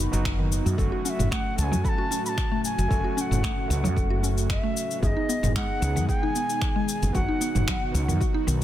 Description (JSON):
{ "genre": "organic downtempo", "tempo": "113 BPM", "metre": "4/4", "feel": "straight", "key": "F# dorian", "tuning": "A4 = 440 Hz", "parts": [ { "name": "overdriven tine electric piano", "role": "accompaniment", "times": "0.0-8.6 s", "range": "A3 to G#4", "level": "-33 LUFS", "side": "right 2 dB", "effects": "medium tremolo, sidechain pumping, ping-pong delay" }, { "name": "airy breathy pad", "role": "sustained chords", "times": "0.0-8.6 s", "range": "A2 to G#4", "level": "-36 LUFS", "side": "right 1 dB", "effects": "chorus, sidechain pumping" }, { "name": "mallet-like synth pluck", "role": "arpeggios", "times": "0.0-8.6 s", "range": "D#3 to A4", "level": "-31 LUFS", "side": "left 1 dB", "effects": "chorus, ping-pong delay" }, { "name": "woody fretless electric bass", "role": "bass", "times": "0.0-8.6 s", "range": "F#1 to F#2", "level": "-25 LUFS", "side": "equal", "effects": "sidechain pumping" }, { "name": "deep house drum kit", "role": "drums", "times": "0.1-8.6 s", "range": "cabasa, finger snaps, toms", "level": "-31 LUFS", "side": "left 1 dB", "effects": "overdrive, soft clipping on snare" }, { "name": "electronic kick drum", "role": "drums", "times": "0.3-8.3 s", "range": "none", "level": "-28 LUFS", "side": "equal", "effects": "overdrive" }, { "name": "bright reedy bansuri", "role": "melody", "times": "1.1-8.2 s", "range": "D#5 to B5", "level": "-31 LUFS", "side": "left 1 dB", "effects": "ping-pong delay" } ], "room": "light reverb, digital ambience", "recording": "dense, heavily limited modern master", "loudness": "-22 LUFS", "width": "side -12 dB against mid", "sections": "0.0-8.6 A section", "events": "none", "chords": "0.0 B/F#; 0.8 F#m; 5.0 G#m/F#; 7.2 B/F#" }